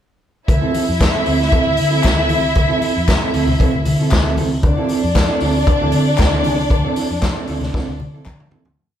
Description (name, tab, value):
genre	disco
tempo	116 BPM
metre	4/4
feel	straight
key	D minor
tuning	A4 = 437 Hz
part	dark studio string section	second line	0.5-8.5 s	D4 to E5	-20 LUFS	left 1 dB	none
part	mellow electric guitar	accompaniment	0.5-8.7 s	F3 to A4	-22 LUFS	right 5 dB	none
part	hollow-body short-scale fingered electric bass	bass	0.5-8.8 s	C#2 to D3	-20 LUFS	equal	none
part	vintage drum kit	drums	0.5-8.8 s	hi-hat, kick drum, snare drum, toms	-18 LUFS	equal	none
part	congas	percussion	0.7-8.6 s	none	-27 LUFS	left 3 dB	none
part	group handclap	percussion	1.0-8.4 s	none	-28 LUFS	left 2 dB	none
room	wet large studio reverb, RT60 1.2 s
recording	band playing live in one room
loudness	-14 LUFS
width	side -10 dB against mid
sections	0.5-8.8 groove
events	fade-out 6.7-8.8; drum fill 7.7-8.8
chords	0.5 Dm9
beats	| 0.48 1.00 1.52 2.04 | 2.56 3.08 3.60 4.12 | 4.63 5.15 5.67 6.19 | 6.71 7.22 7.74 8.26